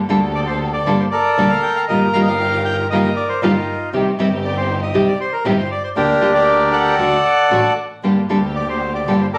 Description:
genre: tango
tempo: 117 BPM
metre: 4/4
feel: rubato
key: G minor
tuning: A4 = 440 Hz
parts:
  - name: dark symphonic string section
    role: stabs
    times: 0.0-9.3 s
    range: A3 to A4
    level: -30 LUFS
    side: equal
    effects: none
  - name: warm double bass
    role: bass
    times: 0.0-9.3 s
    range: G1 to D2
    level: -27 LUFS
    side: equal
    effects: none
  - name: nylon-string guitar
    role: accompaniment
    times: 0.1-9.2 s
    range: C3 to A4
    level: -20 LUFS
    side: equal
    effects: none
  - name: bandoneon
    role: melody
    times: 0.3-9.4 s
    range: D4 to G5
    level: -19 LUFS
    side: equal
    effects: none
room: light reverb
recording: recorded on a phone in the room, studio reverb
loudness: -17 LUFS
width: mono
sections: 0.0-9.4 A section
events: none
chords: 0.0 Gmadd9; 1.9 Ebadd9/G; 3.9 Cm; 6.0 Gm/D; 7.0 D; 8.0 Gmadd9

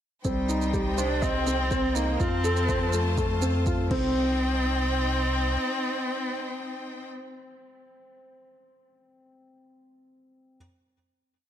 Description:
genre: piano and strings electronica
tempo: 123 BPM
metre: 4/4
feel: straight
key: C dorian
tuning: A4 = 440 Hz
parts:
  - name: felt-muted upright piano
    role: riff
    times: 0.2-10.6 s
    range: A3 to Eb5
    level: -30 LUFS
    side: left 1 dB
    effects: tape echo
  - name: round analog bass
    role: bass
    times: 0.2-5.6 s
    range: C2 to F2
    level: -28 LUFS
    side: equal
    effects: sidechain pumping
  - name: electronic kick drum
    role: drums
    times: 0.2-4.0 s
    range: none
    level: -30 LUFS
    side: equal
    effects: none
  - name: electronic shaker and crash cymbal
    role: drums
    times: 0.2-4.0 s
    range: none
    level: -40 LUFS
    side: right 6 dB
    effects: none
  - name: warm cello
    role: melody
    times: 0.3-7.1 s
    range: G3 to D4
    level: -30 LUFS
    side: equal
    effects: low-pass filter
  - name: bright studio string section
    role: sustained chords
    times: 0.3-7.1 s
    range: Eb4 to A5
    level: -34 LUFS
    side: left 2 dB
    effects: sidechain pumping
room: light reverb, studio reverb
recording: none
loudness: -24 LUFS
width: side -10 dB against mid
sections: 0.3-4.2 build; 4.2-8.1 final hit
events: build-up 0.3-4.2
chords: 0.3 Cm; 2.2 F; 3.9 Cm

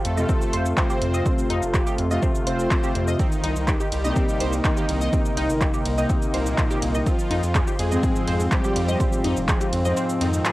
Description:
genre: melodic techno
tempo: 124 BPM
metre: 4/4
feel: straight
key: unclear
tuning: A4 = 441 Hz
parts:
  - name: soft supersaw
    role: melody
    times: 0.0-10.5 s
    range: Bb2 to C5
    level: -30 LUFS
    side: equal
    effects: sidechain pumping, analog delay
  - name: dark analog pad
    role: sustained chords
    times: 0.0-10.5 s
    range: F4 to C6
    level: -34 LUFS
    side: right 1 dB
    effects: chorus, sidechain pumping, cassette tape
  - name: round analog bass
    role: bass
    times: 0.0-10.4 s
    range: F1 to F2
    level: -25 LUFS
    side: equal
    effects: sidechain pumping
  - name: deep house drum kit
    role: drums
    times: 0.0-10.5 s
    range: handclaps, hi-hat, ride cymbal, shaker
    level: -30 LUFS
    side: equal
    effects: overdrive, cassette tape
  - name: tight sequenced synth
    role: arpeggios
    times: 0.2-10.5 s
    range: C4 to Eb5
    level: -31 LUFS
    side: equal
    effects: chorus, sidechain pumping, cassette tape, tape echo
  - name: analog synth brass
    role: stabs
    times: 0.2-10.5 s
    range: Ab2 to F4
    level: -26 LUFS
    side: left 1 dB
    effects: chorus, sidechain pumping, cassette tape, tape echo
  - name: electronic kick drum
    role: drums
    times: 0.3-9.6 s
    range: none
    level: -23 LUFS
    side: equal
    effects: overdrive, cassette tape
room: light reverb, digital ambience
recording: home recording on cassette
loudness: -20 LUFS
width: side -18 dB against mid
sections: 0.0-10.5 A section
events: kick drops out 10.0-10.5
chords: 0.0 F; 3.2 Cm7; 7.1 Fm

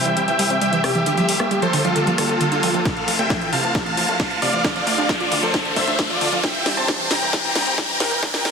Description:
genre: uplifting trance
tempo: 134 BPM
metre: 4/4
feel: straight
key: unclear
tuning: A4 = 445 Hz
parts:
  - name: supersaw chords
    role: melody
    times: 0.0-8.5 s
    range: F4 to Bb5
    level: -21 LUFS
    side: equal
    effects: vintage 12-bit sampler grit, sidechain pumping, low-pass filter, tape echo
  - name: warm studio string section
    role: sustained chords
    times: 0.0-8.5 s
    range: C3 to A4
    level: -28 LUFS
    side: left 1 dB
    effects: sidechain pumping
  - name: plucky analog bass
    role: bass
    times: 0.0-8.5 s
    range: F1 to D2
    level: -32 LUFS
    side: equal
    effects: none
  - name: riser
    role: sound effects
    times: 0.1-8.5 s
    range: none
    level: -25 LUFS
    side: left 1 dB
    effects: none
  - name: wide unison pluck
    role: arpeggios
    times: 0.1-8.5 s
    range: C3 to F4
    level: -26 LUFS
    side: right 3 dB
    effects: sidechain pumping, tape echo
  - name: techno drum kit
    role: drums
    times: 0.1-8.5 s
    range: hi-hat, rim click, snare drum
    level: -24 LUFS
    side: left 1 dB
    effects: sidechain pumping on hats
  - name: electronic kick drum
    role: drums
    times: 2.9-8.3 s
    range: none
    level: -27 LUFS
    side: equal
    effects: none
room: moderate huge ambient reverb, RT60 7.2 s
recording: dense, heavily limited modern master, high-pass filter, faint mains hum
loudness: -17 LUFS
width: side -6 dB against mid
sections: 0.0-8.5 A section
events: build-up 0.0-8.5; filter sweep on synth arpeggio sound 0.0-8.5; filter sweep 0.0-8.5; riser 0.1-8.5; drum fill 2.9-8.5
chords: 0.0 C; 1.1 Gm7; 2.9 Fmaj7; 4.6 Dm; 6.4 C

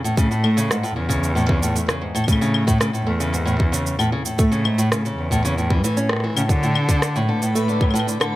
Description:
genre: folktronica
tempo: 114 BPM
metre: 4/4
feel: straight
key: A major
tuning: A4 = 440 Hz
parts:
  - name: nylon-string guitar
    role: arpeggios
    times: 0.0-8.4 s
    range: F#2 to C#4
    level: -22 LUFS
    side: equal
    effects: ping-pong delay
  - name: electronic shaker, claves and rim click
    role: drums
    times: 0.1-8.3 s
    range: none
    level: -25 LUFS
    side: equal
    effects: none
  - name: warm cello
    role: bass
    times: 0.2-8.3 s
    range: E2 to D3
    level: -22 LUFS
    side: equal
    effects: none
  - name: electronic kick drum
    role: drums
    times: 0.2-7.9 s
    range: none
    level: -20 LUFS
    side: equal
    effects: none
  - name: backwards swelling texture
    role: texture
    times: 7.4-8.4 s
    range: B4 to B5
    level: -32 LUFS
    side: equal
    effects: built-in reverb
room: small room ambience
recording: none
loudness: -17 LUFS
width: side -16 dB against mid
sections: 0.0-8.4 A section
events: none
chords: 0.0 A; 6.5 D

